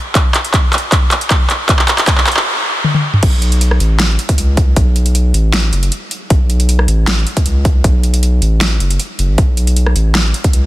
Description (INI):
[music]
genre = future bass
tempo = 156 BPM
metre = 4/4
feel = half-time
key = unclear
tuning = A4 = 437 Hz
[part]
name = big-room dance drum kit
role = drums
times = 0.2-10.6 s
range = crash cymbal, handclaps, hi-hat, rim click, snare drum, toms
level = -15 LUFS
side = equal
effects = overdrive, small room ambience
[part]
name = electronic kick drum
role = drums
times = 0.2-10.5 s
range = none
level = -12 LUFS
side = equal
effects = overdrive, small room ambience
[part]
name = saturated sub bass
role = bass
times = 3.2-10.7 s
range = F#1 to C#2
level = -12 LUFS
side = equal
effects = sidechain pumping
[sound]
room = light reverb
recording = dense, heavily limited modern master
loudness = -11 LUFS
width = side -16 dB against mid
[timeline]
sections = 0.0-3.2 A section; 3.2-10.7 B section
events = build-up 0.0-3.2; drum fill 0.0-2.5, 2.8-3.2; stop 2.5-3.2; drop 3.2-10.7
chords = none